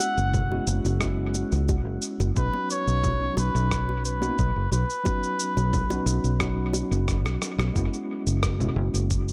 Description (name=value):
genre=sunset chillout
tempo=89 BPM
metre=4/4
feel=straight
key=B major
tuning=A4 = 440 Hz
part: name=trumpet with cup mute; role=melody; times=0.0-7.0 s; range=B4 to F#5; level=-32 LUFS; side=equal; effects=dub echo
part: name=tine electric piano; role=accompaniment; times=0.0-9.3 s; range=F#3 to F#4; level=-33 LUFS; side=equal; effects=overdrive, dub echo
part: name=electronic shaker, congas and rim click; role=drums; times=0.0-9.3 s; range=none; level=-34 LUFS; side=equal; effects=dub echo
part: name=bongos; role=percussion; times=0.0-7.7 s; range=none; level=-37 LUFS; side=equal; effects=none
part: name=fingered electric bass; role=bass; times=0.2-9.3 s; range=F#1 to C#2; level=-28 LUFS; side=equal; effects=none
part: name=electronic kick drum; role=drums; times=0.3-9.2 s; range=none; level=-31 LUFS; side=equal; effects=none
room=light reverb, digital ambience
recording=echo-heavy mix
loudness=-25 LUFS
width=mono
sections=0.0-7.8 A section; 7.8-9.3 B section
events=drum fill 7.1-7.8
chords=0.0 F#9sus4; 2.4 B; 7.8 F#9sus4